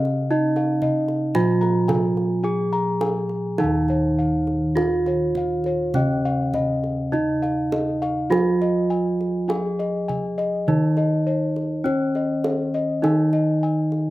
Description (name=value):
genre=Javanese gamelan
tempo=51 BPM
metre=4/4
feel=straight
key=Eb slendro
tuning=A4 = 439 Hz
part: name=gamelan-type bronze metallophone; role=melody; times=0.0-14.1 s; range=Db4-40c to Ab4-20c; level=-23 LUFS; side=right 2 dB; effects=slapback echo
part: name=gamelan-type bronze metallophone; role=accompaniment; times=0.0-14.1 s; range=Db3-40c to F3+40c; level=-25 LUFS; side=equal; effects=none
part: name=gamelan-type bossed gongs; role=arpeggios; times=0.0-13.9 s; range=Db5-40c to Bb5+20c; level=-27 LUFS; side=left 4 dB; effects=slapback echo
part: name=gamelan-type bossed gongs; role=bass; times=0.0-14.1 s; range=Eb2 to F4+40c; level=-28 LUFS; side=equal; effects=none
part: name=kendang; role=percussion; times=0.1-14.1 s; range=none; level=-29 LUFS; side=right 2 dB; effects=none
room=little or no reverb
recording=recorded outdoors, with no room sound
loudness=-19 LUFS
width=side -16 dB against mid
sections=0.0-3.6 A section; 3.6-14.1 B section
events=none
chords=none